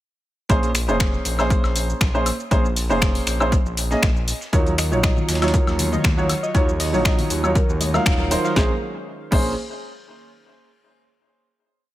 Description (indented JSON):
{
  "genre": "deep house",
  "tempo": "119 BPM",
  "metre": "4/4",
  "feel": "swing 54% on 16ths",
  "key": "Bb minor",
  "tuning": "A4 = 440 Hz",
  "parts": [
    { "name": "felt-muted upright piano", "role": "stabs", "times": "0.5-9.5 s", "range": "Gb3 to F5", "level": "-23 LUFS", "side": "right 1 dB", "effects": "sidechain pumping, digital delay" },
    { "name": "smooth synth bass", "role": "bass", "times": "0.5-9.6 s", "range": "Eb1 to Eb2", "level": "-24 LUFS", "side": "equal", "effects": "tube saturation" },
    { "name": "breakbeat sampler-style drum kit", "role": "drums", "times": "0.5-8.6 s", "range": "hi-hat, snare drum", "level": "-34 LUFS", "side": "left 1 dB", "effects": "none" },
    { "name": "electronic kick drum", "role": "drums", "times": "0.5-9.4 s", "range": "none", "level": "-20 LUFS", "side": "equal", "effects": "overdrive" },
    { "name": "punchy analog drum machine", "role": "drums", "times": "0.5-9.4 s", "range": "crash cymbal, finger snaps, hi-hat, shaker, snare drum, woodblock", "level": "-26 LUFS", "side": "left 2 dB", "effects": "overdrive" },
    { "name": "airy breathy pad", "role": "sustained chords", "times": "4.5-8.8 s", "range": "Eb3 to Db5", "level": "-31 LUFS", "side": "right 1 dB", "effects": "chorus, vintage 12-bit sampler grit, sidechain pumping" },
    { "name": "soft round pluck", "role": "arpeggios", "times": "4.5-9.6 s", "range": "Ab4 to Gb5", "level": "-31 LUFS", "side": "right 1 dB", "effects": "lush chorus, sidechain pumping, digital delay" },
    { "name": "congas", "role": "percussion", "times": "5.2-8.0 s", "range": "none", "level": "-30 LUFS", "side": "left 3 dB", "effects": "none" }
  ],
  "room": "digital ambience",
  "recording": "none",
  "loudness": "-17 LUFS",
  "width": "side -15 dB against mid",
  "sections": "0.5-8.6 drop; 8.6-10.6 final chord",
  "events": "drop 0.5-8.6; band accent 8.1",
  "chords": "0.5 Bbm9; 4.5 Ebm9; 8.6 Bbm9",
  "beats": "| 0.50 1.00 1.50 2.01 | 2.51 3.02 3.52 4.03 | 4.53 5.03 5.54 6.04 | 6.55 7.05 7.55 8.06 | 8.56 9.07"
}